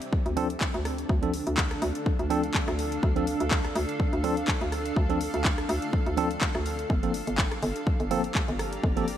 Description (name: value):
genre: deep house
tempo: 124 BPM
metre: 4/4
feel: swing 55% on 16ths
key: D minor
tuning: A4 = 439 Hz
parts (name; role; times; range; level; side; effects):
- house drum kit; drums; 0.0-9.2 s; handclaps, hi-hat, rim click; -33 LUFS; left 1 dB; overdrive, small room ambience
- granular cloud pad; texture; 0.0-9.2 s; C4 to Bb5; -33 LUFS; right 1 dB; built-in reverb, sidechain pumping
- electronic kick drum; drums; 0.1-8.9 s; none; -27 LUFS; equal; overdrive, small room ambience
- hollow knocking FM bass; bass; 0.3-9.2 s; G1 to D2; -31 LUFS; equal; sidechain pumping
- barky tine electric piano; stabs; 0.4-9.1 s; F3 to A4; -31 LUFS; right 2 dB; medium stereo tremolo, sidechain pumping, digital delay
room: moderate lush hall reverb, RT60 2.7 s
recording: bright 1980s-style digital production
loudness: -25 LUFS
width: side -10 dB against mid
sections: 0.0-9.2 A section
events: none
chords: 0.0 Dm7; 6.9 Gm7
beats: 0.13 0.61 | 1.09 1.58 2.06 2.54 | 3.03 3.51 4.00 4.48 | 4.96 5.45 5.93 6.42 | 6.90 7.38 7.87 8.35 | 8.84